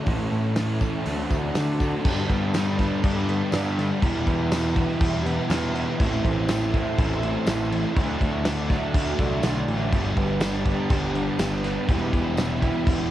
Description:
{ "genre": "rock, shoegaze and dream pop", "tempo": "122 BPM", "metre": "4/4", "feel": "straight", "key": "unclear", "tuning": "A4 = 440 Hz", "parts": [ { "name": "phased string machine", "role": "sustained chords", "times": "0.0-13.1 s", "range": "F#4 to C#6", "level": "-36 LUFS", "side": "equal", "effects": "ensemble chorus, phaser, cassette tape" }, { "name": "picked plugged-in twelve-string acoustic guitar", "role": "arpeggios", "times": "0.0-13.1 s", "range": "E3 to E4", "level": "-33 LUFS", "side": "right 7 dB", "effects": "lush chorus, cassette tape, analog delay" }, { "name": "raw garage guitar", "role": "riff", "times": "0.0-13.1 s", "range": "G2 to F#4", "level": "-31 LUFS", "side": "right 7 dB", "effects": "overdrive, reverse reverb, cassette tape" }, { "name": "sludgy distorted guitar", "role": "riff", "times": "0.0-13.1 s", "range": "G2 to F#4", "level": "-30 LUFS", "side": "equal", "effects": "overdrive, cassette tape" }, { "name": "thick fuzz guitar", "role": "riff", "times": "0.0-13.1 s", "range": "E2 to D4", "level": "-30 LUFS", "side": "left 6 dB", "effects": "distortion, ensemble chorus, cassette tape" }, { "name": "growling picked electric bass", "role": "bass", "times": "0.1-13.1 s", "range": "E1 to D3", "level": "-28 LUFS", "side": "equal", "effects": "overdrive" }, { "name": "loose indie drum kit", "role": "drums", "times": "0.1-13.0 s", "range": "crash cymbal, hi-hat, kick drum, snare drum", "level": "-26 LUFS", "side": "equal", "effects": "cassette tape" }, { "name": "tambourine", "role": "percussion", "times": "0.1-12.5 s", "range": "none", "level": "-44 LUFS", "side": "left 8 dB", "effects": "none" } ], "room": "small room ambience", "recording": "home recording on cassette", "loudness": "-21 LUFS", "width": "side -13 dB against mid", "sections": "0.0-2.1 A section; 2.1-13.1 B section", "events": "none", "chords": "0.1 A; 1.1 D7; 2.1 Gadd9; 4.0 Em; 6.0 Am; 8.0 Dadd9; 9.9 Gadd9; 11.9 Em" }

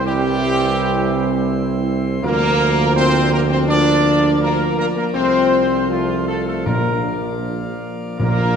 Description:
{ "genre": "classical, ceremonial fanfare", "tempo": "76-83 BPM", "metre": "4/4", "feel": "straight", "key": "Bb lydian", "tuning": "A4 = 442 Hz", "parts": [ { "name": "mellow trumpet section", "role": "melody", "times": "0.0-8.6 s", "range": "F4 to D5", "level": "-22 LUFS", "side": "right 1 dB", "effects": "none" }, { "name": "chamber organ, principal chorus", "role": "sustained chords", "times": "0.0-8.6 s", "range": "F3 to D5", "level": "-24 LUFS", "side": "left 1 dB", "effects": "none" }, { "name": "dark trombone section", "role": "sustained chords", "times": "0.0-8.6 s", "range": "E3 to D4", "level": "-25 LUFS", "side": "right 3 dB", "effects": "none" }, { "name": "warm tuba", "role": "bass", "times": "0.0-8.6 s", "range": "Bb1 to D2", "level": "-21 LUFS", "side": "right 4 dB", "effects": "none" }, { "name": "warm French horn section", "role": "sustained chords", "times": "0.1-8.6 s", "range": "F3 to D4", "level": "-20 LUFS", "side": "left 3 dB", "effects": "none" }, { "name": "timpani", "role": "percussion", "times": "6.7-8.6 s", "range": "Bb2", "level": "-22 LUFS", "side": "right 1 dB", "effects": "none" } ], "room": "wet concert hall reverb, RT60 2.3 s", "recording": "minimal, uncompressed stereo recording", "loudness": "-15 LUFS", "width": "side -7 dB against mid", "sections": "0.0-8.2 A section", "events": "none", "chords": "0.0 C; 2.2 Bb/D; 5.1 F/C; 6.7 Bb" }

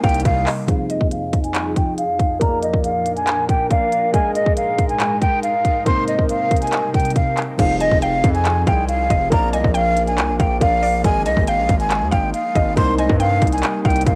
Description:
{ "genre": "hip hop, trap", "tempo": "139 BPM", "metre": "4/4", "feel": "half-time", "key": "F dorian", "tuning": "A4 = 439 Hz", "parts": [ { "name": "breathy mellow silver concert flute", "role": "melody", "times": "0.0-14.2 s", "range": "Eb5 to C6", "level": "-22 LUFS", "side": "equal", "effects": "low-pass filter" }, { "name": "mallet-like synth pluck", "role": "second line", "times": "0.0-0.7, 7.8-14.2 s", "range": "D5 to Ab5", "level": "-32 LUFS", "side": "equal", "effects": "chorus, analog delay" }, { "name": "dark grand piano", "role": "accompaniment", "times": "0.0-14.2 s", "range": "C3 to F5", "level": "-28 LUFS", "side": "equal", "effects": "low-pass filter" }, { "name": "glassy FM pad", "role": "sustained chords", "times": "0.0-14.2 s", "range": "F2 to Bb4", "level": "-29 LUFS", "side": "equal", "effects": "ensemble chorus, built-in reverb, low-pass filter" }, { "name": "distorted 808-style bass", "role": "bass", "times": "0.0-0.5, 7.6-14.2 s", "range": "F1 to G2", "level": "-24 LUFS", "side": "equal", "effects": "distortion" }, { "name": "trap drum kit", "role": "drums", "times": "0.0-14.2 s", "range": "crash cymbal, handclaps, hi-hat, kick drum", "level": "-22 LUFS", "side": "equal", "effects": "cassette tape" } ], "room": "light reverb, digital ambience", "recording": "home recording on cassette", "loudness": "-18 LUFS", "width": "mono", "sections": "0.7-7.6 A section; 7.6-14.2 B section", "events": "filter sweep 0.7-7.6", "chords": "0.0 Cm7; 0.7 Fm7; 2.4 Bb; 4.1 Absus2; 5.9 Cm7; 7.6 Fm7; 9.3 Bb; 11.0 Absus2; 12.8 Cm7" }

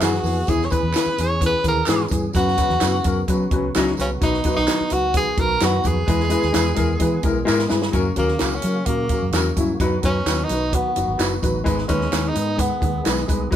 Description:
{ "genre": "uptempo 1960s-style soul", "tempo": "129 BPM", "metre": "4/4", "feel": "straight", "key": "F# mixolydian", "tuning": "A4 = 440 Hz", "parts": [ { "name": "breathy tenor saxophone", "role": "melody", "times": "0.0-13.1 s", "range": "A#3 to C#5", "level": "-23 LUFS", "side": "right 1 dB", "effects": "none" }, { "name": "dark upright piano", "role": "accompaniment", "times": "0.0-13.6 s", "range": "E3 to B4", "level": "-23 LUFS", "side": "left 3 dB", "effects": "none" }, { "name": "percussive tonewheel organ", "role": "sustained chords", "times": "0.0-13.6 s", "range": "C#3 to G#4", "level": "-32 LUFS", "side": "right 1 dB", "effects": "fast rotary speaker, overdrive, chorus vibrato" }, { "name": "vintage muted fingered electric bass", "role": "bass", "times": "0.0-13.6 s", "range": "F#1 to F#3", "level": "-25 LUFS", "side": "right 1 dB", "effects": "none" }, { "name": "compact cocktail drum kit", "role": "drums", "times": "0.0-13.6 s", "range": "hi-hat, kick drum, snare drum", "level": "-24 LUFS", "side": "equal", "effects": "none" }, { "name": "handclaps and tambourine", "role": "percussion", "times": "0.0-13.6 s", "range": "none", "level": "-32 LUFS", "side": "right 6 dB", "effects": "none" } ], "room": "moderate studio reverb, RT60 0.6 s", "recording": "band playing live in one room", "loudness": "-18 LUFS", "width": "side -10 dB against mid", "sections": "0.0-7.9 A section; 7.9-13.6 B section", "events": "drum fill 7.5-7.9; tenor saxophone solo 7.9-13.6", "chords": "0.0 E; 2.4 F#sus4; 4.2 B; 6.1 E; 7.9 F#; 9.8 B; 11.7 G#m" }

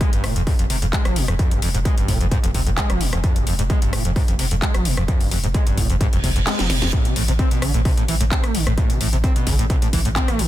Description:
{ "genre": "driving peak-time techno", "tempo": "130 BPM", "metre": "4/4", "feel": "straight", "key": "unclear", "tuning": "A4 = 439 Hz", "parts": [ { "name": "screaming distorted acid line", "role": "riff", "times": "0.0-10.5 s", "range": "F2 to C4", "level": "-23 LUFS", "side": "equal", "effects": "distortion, lush chorus, sidechain pumping, digital delay" }, { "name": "electronic kick drum", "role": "drums", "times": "0.0-10.3 s", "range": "none", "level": "-20 LUFS", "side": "equal", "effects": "distortion, studio reverb" }, { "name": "techno drum kit", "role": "drums", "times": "0.0-10.5 s", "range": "handclaps, hi-hat, rim click, snare drum", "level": "-26 LUFS", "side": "left 1 dB", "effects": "sidechain pumping on hats, studio reverb" }, { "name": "saturated sub bass", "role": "bass", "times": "0.1-10.5 s", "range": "F1 to A1", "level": "-23 LUFS", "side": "equal", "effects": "overdrive, sidechain pumping, low-pass filter" }, { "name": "reverse cymbal", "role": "sound effects", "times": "6.1-6.9 s", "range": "none", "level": "-31 LUFS", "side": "right 4 dB", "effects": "none" } ], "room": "digital ambience", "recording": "dense, heavily limited modern master", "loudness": "-17 LUFS", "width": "side -14 dB against mid", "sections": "0.0-10.5 A section", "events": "reverse cymbal 6.1-6.9; kick drops out 6.5-6.9; drum fill 6.5-6.9", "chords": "0.0 Fm; 6.9 Am" }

